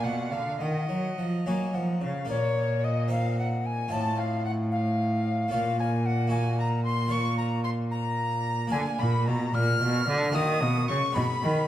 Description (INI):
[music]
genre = classical, baroque-style sonata movement with continuo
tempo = 74 BPM (dotted quarters)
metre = 6/8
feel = straight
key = Bb minor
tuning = A4 = 440 Hz
[part]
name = bright alto recorder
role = melody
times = 0.0-11.7 s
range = Db5 to F6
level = -32 LUFS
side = left 5 dB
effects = none
[part]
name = rich violin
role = second line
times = 0.0-11.7 s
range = Db5 to F6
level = -35 LUFS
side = right 4 dB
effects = none
[part]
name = harpsichord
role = accompaniment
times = 0.0-11.7 s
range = A2 to Eb5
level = -32 LUFS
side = equal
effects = none
[part]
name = rich cello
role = bass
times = 0.0-11.7 s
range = A2 to Gb3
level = -27 LUFS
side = right 1 dB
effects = none
[sound]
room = wet recital hall reverb, RT60 1.6 s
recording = dark, warm production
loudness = -24 LUFS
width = side -12 dB against mid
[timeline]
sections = 0.0-2.3 A section; 2.3-11.7 A section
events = none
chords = 0.0 Bb; 0.6 Ebm; 2.3 Bbm; 3.1 Ab13/Bb; 3.9 F7/A; 5.5 Bbm; 6.3 Ebm/Bb; 7.1 Bbm; 8.7 Bb7; 10.3 Ebm; 11.2 Abm/Cb